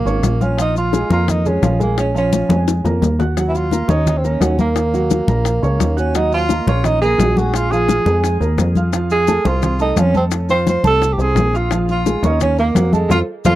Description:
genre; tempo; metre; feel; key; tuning
Afro-Cuban jazz; 173 BPM; 4/4; straight; Bb minor; A4 = 439 Hz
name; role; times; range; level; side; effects
mellow tenor saxophone; melody; 0.0-13.5 s; Ab3 to C5; -19 LUFS; right 2 dB; tape echo
plucky analog bass; bass; 0.0-13.6 s; Ab1 to F2; -18 LUFS; equal; none
warm upright piano; accompaniment; 0.1-13.6 s; F3 to Gb6; -22 LUFS; right 2 dB; none
bongos; percussion; 0.1-13.5 s; none; -23 LUFS; left 8 dB; none
congas; percussion; 0.1-13.5 s; none; -21 LUFS; left 2 dB; none
maracas; percussion; 0.1-13.5 s; none; -32 LUFS; left 12 dB; none
room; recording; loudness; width
light reverb; dry, close 1970s-style studio recording; -14 LUFS; side -14 dB against mid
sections
0.0-13.6 A section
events
drum fill 2.3-3.4; band accent 13.1-13.6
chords
0.0 Eb7(no3) (rootless); 0.6 Bbm7; 3.4 Ebm7; 7.5 Bb5; 8.9 F; 11.7 Bbm7; 12.4 Ebm7

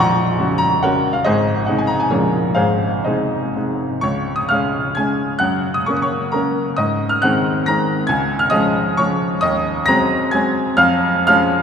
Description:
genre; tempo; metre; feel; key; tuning
classical, romantic triple-time dance for piano with dotted rhythms; 117-149 BPM; 3/4; rubato; Db major; A4 = 443 Hz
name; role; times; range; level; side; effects
bright baby grand piano; solo; 0.0-11.6 s; Bb0 to Bb6; -15 LUFS; equal; none
room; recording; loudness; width
wet cathedral reverb, RT60 6.9 s; recorded in a church or concert hall; -15 LUFS; side -7 dB against mid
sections
0.0-4.0 A section; 4.0-11.6 B section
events
none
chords
0.0 Gb/Bb; 1.2 Ab; 2.1 Bbm7; 2.6 Ab; 4.0 Db; 5.4 Gb; 6.8 Ab7; 8.1 Db; 9.4 Ab7/Eb; 10.8 Db/F

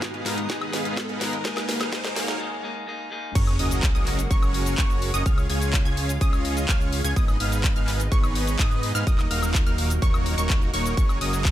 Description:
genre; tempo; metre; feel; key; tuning
EDM, festival progressive house; 126 BPM; 4/4; straight; F# major; A4 = 440 Hz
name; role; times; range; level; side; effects
clean electric guitar; accompaniment; 0.0-3.3 s; G#2 to A#4; -32 LUFS; left 3 dB; sidechain pumping, ping-pong delay
lush unison pad; sustained chords; 0.0-11.5 s; D#2 to D#5; -35 LUFS; equal; chorus, sidechain pumping
dense compressed supersaw; riff; 0.0-11.5 s; A#3 to G#5; -30 LUFS; right 1 dB; sidechain pumping, ping-pong delay
electronic kick drum; drums; 0.0-11.5 s; none; -22 LUFS; equal; high-pass filter on kick
house drum kit; drums; 0.0-11.5 s; cabasa, crash cymbal, handclaps, hi-hat, ride cymbal, snare drum, woodblock; -30 LUFS; left 1 dB; overdrive
riser and sub drop; sound effects; 0.0-5.3 s; none; -32 LUFS; equal; none
wide unison pluck; arpeggios; 3.4-11.5 s; C#6 to G#6; -32 LUFS; right 1 dB; sidechain pumping, ping-pong delay
fat analog bass; bass; 3.4-11.5 s; D#1 to G#2; -27 LUFS; equal; sidechain pumping
room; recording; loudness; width
little or no reverb; high-pass filter; -21 LUFS; side -13 dB against mid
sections
0.0-3.4 A section; 3.4-11.5 B section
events
build-up 0.0-3.4; drum fill 0.0-2.4; riser 0.0-2.4; break 2.4-3.4; drop 3.4-11.5; impact 3.4-5.3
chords
0.0 G#m; 1.4 D#m; 3.4 F#add9; 5.3 C#; 7.2 G#m; 9.1 D#m; 11.0 F#add9

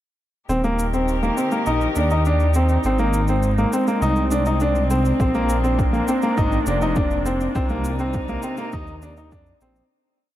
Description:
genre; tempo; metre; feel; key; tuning
piano and strings electronica; 102 BPM; 4/4; straight; Eb major; A4 = 440 Hz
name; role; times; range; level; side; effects
muted string quartet; sustained chords; 0.5-9.9 s; C3 to Bb4; -26 LUFS; left 1 dB; none
bright baby grand piano; riff; 0.5-9.8 s; Bb3 to Eb4; -22 LUFS; equal; ping-pong delay
dark detuned saw bass; bass; 0.5-9.8 s; Eb1 to F2; -22 LUFS; equal; sidechain pumping
shaker; drums; 0.5-9.9 s; none; -39 LUFS; equal; overdrive
electronic kick drum; drums; 5.2-9.4 s; none; -24 LUFS; equal; overdrive
room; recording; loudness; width
light reverb, small room ambience; none; -18 LUFS; side -13 dB against mid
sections
0.5-9.9 build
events
build-up 0.5-9.9; fade-out 6.8-9.9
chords
0.5 Eb; 2.8 Ab; 5.2 Bbadd9; 7.6 Cmadd9

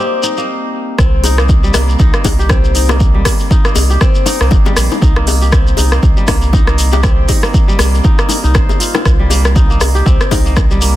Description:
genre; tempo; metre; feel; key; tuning
afro house; 119 BPM; 4/4; swing 57% on 16ths; C minor; A4 = 440 Hz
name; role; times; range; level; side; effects
kora; arpeggios; 0.0-11.0 s; G3 to C5; -18 LUFS; equal; sidechain pumping, ping-pong delay
shekere; percussion; 0.2-10.9 s; none; -24 LUFS; left 3 dB; none
round analog bass; bass; 1.0-11.0 s; G1 to C2; -13 LUFS; equal; sidechain pumping
deep house drum kit; drums; 1.0-10.9 s; hi-hat, rim click; -18 LUFS; equal; soft clipping on snare
electronic kick drum; drums; 1.0-10.7 s; none; -11 LUFS; equal; none
bongos; percussion; 1.2-10.7 s; none; -21 LUFS; left 7 dB; none
room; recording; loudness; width
small room ambience; dense, heavily limited modern master; -9 LUFS; side -14 dB against mid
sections
1.0-11.0 A section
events
stop 0.5-1.0; drop 1.0-11.0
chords
0.0 Cm7; 5.0 Eb/C; 9.1 Cm7

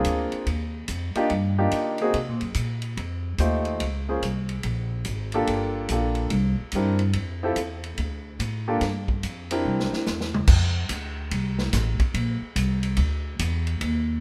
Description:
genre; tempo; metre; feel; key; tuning
jazz, big band swing; 144 BPM; 4/4; swing 65% on 8ths; F major; A4 = 439 Hz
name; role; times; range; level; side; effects
clear grand piano; accompaniment; 0.0-10.1 s; A3 to C5; -29 LUFS; equal; none
upright bass; bass; 0.0-14.2 s; G1 to D3; -28 LUFS; equal; none
vintage drum kit; drums; 0.0-13.9 s; crash cymbal, hi-hat, kick drum, ride cymbal, snare drum, toms; -30 LUFS; equal; none
room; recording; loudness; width
light reverb; none; -26 LUFS; mono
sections
0.0-10.5 A section; 10.5-14.2 B section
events
drum fill 9.7-10.5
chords
0.5 Ebmaj7; 2.1 Gb; 3.0 F7; 3.8 Bbm7; 5.5 Gm7; 6.3 C7; 7.2 Fmaj7; 8.0 D5; 8.8 Gm7; 9.7 C7; 10.5 F; 12.2 Bb

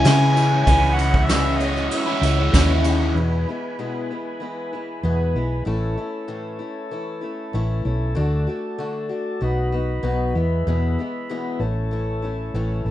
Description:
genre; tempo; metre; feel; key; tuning
folk rock and heartland rock; 96 BPM; 4/4; straight; E major; A4 = 440 Hz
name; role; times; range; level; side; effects
mellow harmonica; melody; 0.0-2.8 s; D#5 to G#5; -22 LUFS; equal; plate reverb
picked old ladder-braced acoustic guitar; accompaniment; 0.0-12.9 s; E2 to F#4; -28 LUFS; left 4 dB; none
tonewheel organ; sustained chords; 0.0-12.9 s; C#4 to C#6; -30 LUFS; right 1 dB; slow rotary speaker, plate reverb
overdriven electric guitar; riff; 0.0-3.2 s; C#3 to E4; -22 LUFS; left 1 dB; phaser
hollow-body short-scale fingered electric bass; bass; 0.0-12.9 s; A1 to C#3; -21 LUFS; equal; none
tambourine; percussion; 0.0-3.0 s; none; -37 LUFS; right 9 dB; none
soft brush drum kit; drums; 0.1-3.0 s; kick drum, ride cymbal, snare drum; -22 LUFS; equal; none
room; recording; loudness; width
moderate studio reverb, RT60 0.5 s; rough home demo mix, nothing above 10.7 kHz; -19 LUFS; side -13 dB against mid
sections
0.0-3.2 A section; 3.2-12.9 B section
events
none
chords
0.0 C#madd9; 3.2 E; 5.7 A; 8.2 D; 9.4 B; 10.4 E; 11.6 A

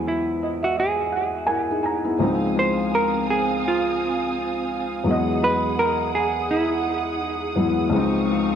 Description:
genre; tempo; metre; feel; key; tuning
hip hop; 84 BPM; 4/4; swing 57% on 16ths; unclear; A4 = 440 Hz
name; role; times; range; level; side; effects
hollow-body jazz guitar; melody; 0.0-7.5 s; E4 to C5; -23 LUFS; right 2 dB; low-pass filter, dub echo
felt-muted upright piano; accompaniment; 0.0-8.6 s; Db2 to Bb5; -23 LUFS; left 2 dB; cassette tape, low-pass filter, dub echo
warm studio string section; sustained chords; 2.2-8.6 s; C4 to Eb6; -27 LUFS; right 4 dB; low-pass filter
room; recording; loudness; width
moderate echo chamber reverb, RT60 1.7 s; echo-heavy mix; -20 LUFS; side -8 dB against mid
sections
0.0-2.2 A section; 2.2-8.6 B section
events
none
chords
0.0 Eadd9; 2.2 Dbmaj9; 5.1 Emaj9; 7.9 Dbmaj9

